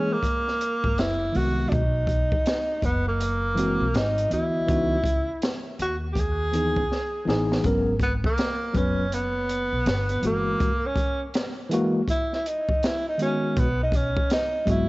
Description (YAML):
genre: hip hop, jazz-hop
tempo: 81 BPM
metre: 4/4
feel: swing 63% on 16ths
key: G# minor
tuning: A4 = 440 Hz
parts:
  - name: breathy tenor saxophone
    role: melody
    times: 0.0-14.9 s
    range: A#3 to G#4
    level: -26 LUFS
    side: right 1 dB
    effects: cassette tape
  - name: tine electric piano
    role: accompaniment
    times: 0.0-14.9 s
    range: D#3 to D#5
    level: -26 LUFS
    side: equal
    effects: fast stereo tremolo, cassette tape
  - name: open jazz drum kit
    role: drums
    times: 0.2-14.9 s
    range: hi-hat, kick drum, snare drum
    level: -27 LUFS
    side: equal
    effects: cassette tape
  - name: upright bass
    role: bass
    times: 0.8-14.9 s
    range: F#1 to D#2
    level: -28 LUFS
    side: equal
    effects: none
room: light reverb, small room reverb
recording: home recording on cassette, nothing above 7.8 kHz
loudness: -22 LUFS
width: side -21 dB against mid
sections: 0.0-7.6 A section; 7.6-14.9 B section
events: drum fill 6.9-7.6; tenor saxophone solo 7.6-14.9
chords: 0.0 F#9 (rootless); 1.0 F#13sus4; 1.7 B6; 3.9 G#5; 4.7 C#m9; 7.6 G#m11; 9.9 G; 10.6 F#9; 12.8 F#5; 13.6 B5